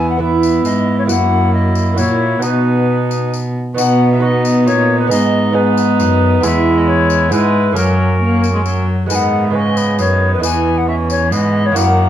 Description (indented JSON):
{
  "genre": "classical, renaissance-style consort dance",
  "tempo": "135 BPM",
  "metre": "3/4",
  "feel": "straight",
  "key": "B major",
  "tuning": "A4 = 441 Hz",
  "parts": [
    { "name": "mellow hollow alto recorder", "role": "melody", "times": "0.0-12.1 s", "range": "A#4 to G#5", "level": "-18 LUFS", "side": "left 6 dB", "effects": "none" },
    { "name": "mellow cor anglais", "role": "second line", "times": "0.0-12.1 s", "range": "A#3 to E4", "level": "-21 LUFS", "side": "right 5 dB", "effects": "none" },
    { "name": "lute", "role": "accompaniment", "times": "0.0-12.1 s", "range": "E2 to B4", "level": "-20 LUFS", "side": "right 5 dB", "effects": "none" },
    { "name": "rich viola", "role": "accompaniment", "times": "0.0-12.1 s", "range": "C#3 to B3", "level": "-19 LUFS", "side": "left 2 dB", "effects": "none" },
    { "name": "rich cello", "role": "bass", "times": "0.0-12.1 s", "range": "E2 to B2", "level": "-16 LUFS", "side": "right 1 dB", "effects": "none" },
    { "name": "tambourine", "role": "percussion", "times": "0.4-12.0 s", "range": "none", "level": "-27 LUFS", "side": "left 9 dB", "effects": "none" }
  ],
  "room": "moderate stone room reverb, RT60 1.1 s",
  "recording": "dark, warm production",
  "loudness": "-12 LUFS",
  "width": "side -11 dB against mid",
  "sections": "0.0-3.8 A section; 3.8-12.1 A section",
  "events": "none",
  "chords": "0.0 E; 1.1 F#7; 2.4 B; 5.1 G#m; 6.4 E; 7.8 F#; 9.1 G#m; 10.4 E",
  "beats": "0.21 0.65 | 1.09 1.53 1.98 | 2.42 2.88 3.33 | 3.77 4.22 4.66 | 5.11 5.55 5.99 | 6.43 6.87 7.32 | 7.76 8.21 8.66 | 9.11 9.55 9.99 | 10.44 10.88 11.32 | 11.76"
}